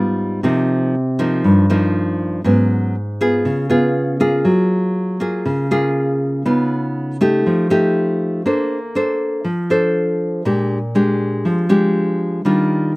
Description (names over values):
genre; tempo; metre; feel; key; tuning
bossa nova; 120 BPM; 4/4; straight; Bb major from 8.4 s; A4 = 440 Hz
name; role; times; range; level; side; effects
nylon-string guitar; solo; 0.0-13.0 s; G2 to C5; -15 LUFS; equal; none
room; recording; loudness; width
little or no reverb; recorded outdoors, with no room sound; -15 LUFS; side -24 dB against mid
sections
0.0-8.4 A section; 8.4-13.0 B section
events
none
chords
0.4 Cm7; 2.4 Abm7; 3.4 Db7; 4.4 Gbmaj9; 6.4 Db9; 7.4 F9; 8.4 Bbmaj9; 10.4 Bb6; 12.5 Ebmaj9